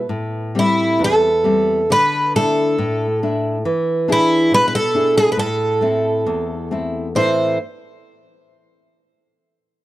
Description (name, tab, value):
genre	fado-style ballad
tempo	68 BPM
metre	2/4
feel	rubato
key	A minor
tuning	A4 = 440 Hz
part	nylon-string guitar	accompaniment	0.0-7.6 s	E2 to G#4	-20 LUFS	left 1 dB	none
part	picked twelve-string acoustic guitar	melody	0.6-7.6 s	E4 to C5	-16 LUFS	right 1 dB	slapback echo
room	studio ambience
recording	dry, close 1970s-style studio recording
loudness	-15 LUFS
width	side -15 dB against mid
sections	0.0-7.2 A section; 7.2-8.9 B section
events	none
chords	0.1 Am7; 1.9 Dsus2; 3.6 E7; 5.4 Am